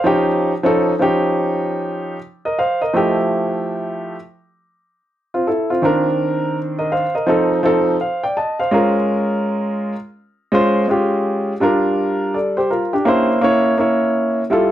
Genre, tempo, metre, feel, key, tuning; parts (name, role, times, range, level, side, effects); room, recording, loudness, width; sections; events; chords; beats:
hip hop; 83 BPM; 4/4; swing 63% on 16ths; A4 = 440 Hz
warm upright piano; solo; 0.0-14.7 s; Eb3 to A5; -15 LUFS; equal
moderate studio reverb, RT60 0.6 s; -15 LUFS; side -12 dB against mid
0.0-2.9 A section; 2.9-14.7 B section
0.1 Eb9; 2.9 Fmaj9; 5.8 Cm9; 7.3 F7; 8.7 Bbm7; 11.6 Gm7; 13.1 C7b9
| 0.05 0.78 1.50 2.22 | 2.94 3.67 4.39 5.11 | 5.84 6.56 7.28 8.01 | 8.73 9.45 10.17 10.90 | 11.62 12.34 13.07 13.79 | 14.51